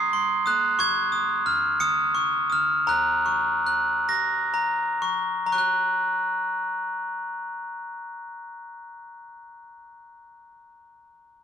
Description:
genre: children's music, lullaby.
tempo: 38-61 BPM (dotted quarters).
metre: 6/8.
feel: rubato.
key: F# major.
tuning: A4 = 440 Hz.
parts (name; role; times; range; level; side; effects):
glockenspiel with brass mallets; solo; 0.0-10.1 s; A#5 to C#7; -22 LUFS; equal; none.
room: little or no reverb.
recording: dry, close 1970s-style studio recording.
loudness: -21 LUFS.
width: side -8 dB against mid.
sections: 0.0-5.5 A section; 5.5-11.4 B section.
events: slowing down 0.8-5.5.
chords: 0.0 G#; 0.8 C#add9; 2.9 F#.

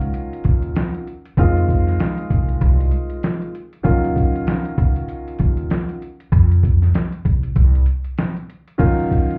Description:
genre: hip hop, boom-bap hip-hop.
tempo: 97 BPM.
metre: 4/4.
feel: swing 58% on 16ths.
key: Eb dorian.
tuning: A4 = 440 Hz.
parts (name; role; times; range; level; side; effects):
dark upright piano; accompaniment; 0.0-9.4 s; Eb3 to F4; -26 LUFS; equal; high-pass filter, low-pass filter, plate reverb.
upright bass; bass; 0.0-9.3 s; C2 to F2; -21 LUFS; equal; none.
boom bap sampler-style drum kit; drums; 0.0-9.4 s; crash cymbal, hi-hat, kick drum, snare drum; -21 LUFS; equal; none.
room: light reverb.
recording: heard muffled through a wall, club reverb, EQ.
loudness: -19 LUFS.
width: mono.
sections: 0.0-8.8 A section.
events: none.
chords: 0.0 Ebm9; 1.4 Fm7; 3.8 Ebm9; 6.3 F5; 8.8 Ebm9.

